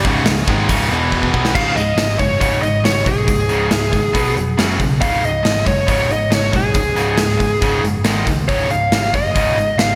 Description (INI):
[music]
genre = hard rock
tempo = 138 BPM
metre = 4/4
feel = straight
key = unclear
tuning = A4 = 441 Hz
[part]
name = overdriven tonewheel organ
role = sustained chords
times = 0.0-1.6 s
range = E3 to Eb5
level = -33 LUFS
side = equal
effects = none
[part]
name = high-gain distorted guitar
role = riff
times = 0.0-1.5 s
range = Db2 to Cb4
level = -26 LUFS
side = equal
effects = distortion
[part]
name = overdriven electric guitar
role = riff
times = 0.0-10.0 s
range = Db2 to Cb4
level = -25 LUFS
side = equal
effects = none
[part]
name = tight distorted guitar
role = riff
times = 0.0-10.0 s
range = Db2 to Cb4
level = -25 LUFS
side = equal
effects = distortion
[part]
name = picked electric bass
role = bass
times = 0.0-10.0 s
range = Db1 to Db2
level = -24 LUFS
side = equal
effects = none
[part]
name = gated 80s drum kit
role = drums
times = 0.0-9.9 s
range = crash cymbal, hi-hat, kick drum, snare drum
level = -21 LUFS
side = equal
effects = gated reverb
[part]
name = bluesy overdriven lead guitar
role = melody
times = 1.6-10.0 s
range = Ab4 to F5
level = -21 LUFS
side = equal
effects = distortion, delay
[sound]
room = moderate lush hall reverb, RT60 1.8 s, studio reverb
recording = bright 1980s-style digital production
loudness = -16 LUFS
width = mono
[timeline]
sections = 0.0-1.5 A section; 1.5-10.0 B section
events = drum fill 1.1-1.5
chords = 0.0 Db5; 0.9 E5; 1.3 Db5; 4.1 Cb5; 4.6 Gb5; 5.0 Db5; 8.1 Ab5; 8.5 Db